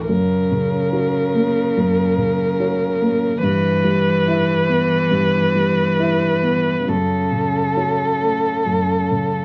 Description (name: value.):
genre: neoclassical piano and strings.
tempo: 67-72 BPM.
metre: 4/4.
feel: rubato.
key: unclear.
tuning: A4 = 441 Hz.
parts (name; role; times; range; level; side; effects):
muted violin; melody; 0.0-9.4 s; A4 to B4; -22 LUFS; equal; none.
muted cello; second line; 0.0-9.4 s; C#3 to E3; -26 LUFS; equal; none.
dark baby grand piano; accompaniment; 0.0-9.4 s; D2 to E5; -22 LUFS; equal; none.
room: light reverb.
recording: nothing above 7.5 kHz.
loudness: -18 LUFS.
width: mono.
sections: 0.0-9.4 A section.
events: none.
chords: 0.1 F#; 3.4 Em/G; 6.9 F#m.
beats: | 0.09 0.93 1.76 2.59 | 3.43 4.27 5.12 5.99 | 6.88 7.77 8.66.